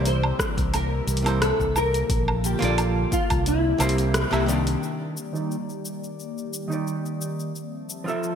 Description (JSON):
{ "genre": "sunset chillout", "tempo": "88 BPM", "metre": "4/4", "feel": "swing 54% on 16ths", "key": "unclear", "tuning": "A4 = 440 Hz", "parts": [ { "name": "nylon-string guitar", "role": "melody", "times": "0.0-4.4 s", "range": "E4 to C5", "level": "-27 LUFS", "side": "left 1 dB", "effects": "ensemble chorus, ping-pong delay" }, { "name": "archtop guitar, miked and amplified", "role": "accompaniment", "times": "0.0-8.4 s", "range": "C3 to E5", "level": "-28 LUFS", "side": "right 1 dB", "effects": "auto-pan, low-pass filter, digital delay" }, { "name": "airy breathy pad", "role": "sustained chords", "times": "0.0-8.4 s", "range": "C3 to A5", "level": "-31 LUFS", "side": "left 1 dB", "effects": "chorus, phaser" }, { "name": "fingered electric bass", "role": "bass", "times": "0.0-4.7 s", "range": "Bb1 to C2", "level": "-24 LUFS", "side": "equal", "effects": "none" }, { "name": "deep house drum kit", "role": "drums", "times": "0.1-8.4 s", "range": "hi-hat, rim click, shaker, woodblock", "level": "-29 LUFS", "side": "equal", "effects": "gated reverb" }, { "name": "electronic kick drum", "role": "drums", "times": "0.4-3.4 s", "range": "none", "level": "-27 LUFS", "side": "equal", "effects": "none" } ], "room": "moderate lush hall reverb, RT60 2.1 s", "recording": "bright 1980s-style digital production", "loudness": "-22 LUFS", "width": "side -8 dB against mid", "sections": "0.0-4.8 A section; 4.8-8.4 B section", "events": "kick drops out 3.5-4.8; band accent 4.1-4.5; filter sweep on hollow-body jazz guitar 4.8-8.4", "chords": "0.0 C7; 2.1 Bbmaj7; 3.5 C7; 4.8 Ebmaj7; 7.5 Fmaj7" }